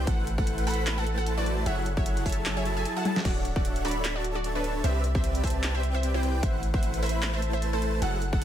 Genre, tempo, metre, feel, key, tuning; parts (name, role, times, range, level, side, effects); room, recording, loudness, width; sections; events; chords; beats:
future bass; 151 BPM; 4/4; swing 56% on 16ths, half-time; A4 = 440 Hz
airy dreamy lead; arpeggios; 0.0-8.4 s; E5 to B5; -36 LUFS; equal; chorus, sidechain pumping, tape echo
supersaw chords; riff; 0.0-8.4 s; F#3 to B5; -33 LUFS; right 1 dB; sidechain pumping
long sustained 808-style bass; bass; 0.0-8.4 s; D1 to C2; -29 LUFS; equal; sidechain pumping
wide unison pluck; melody; 0.1-8.4 s; D4 to A5; -34 LUFS; equal; sidechain pumping, ping-pong delay
dubstep drum kit; drums; 0.1-8.4 s; crash cymbal, handclaps, hi-hat, snare drum, toms; -33 LUFS; left 1 dB; overdrive
electronic kick drum; drums; 0.1-8.4 s; -28 LUFS; equal; overdrive
light reverb, digital ambience; -25 LUFS; side -10 dB against mid
0.0-8.4 A section
drum fill 3.1
0.1 Am6; 1.7 F#m9; 3.2 Dmaj9; 4.8 Cmaj9; 6.4 Am6
| 0.07 0.47 0.87 1.26 | 1.66 2.06 2.46 2.85 | 3.25 3.65 4.04 4.44 | 4.84 5.24 5.63 6.03 | 6.43 6.83 7.22 7.62 | 8.02 8.42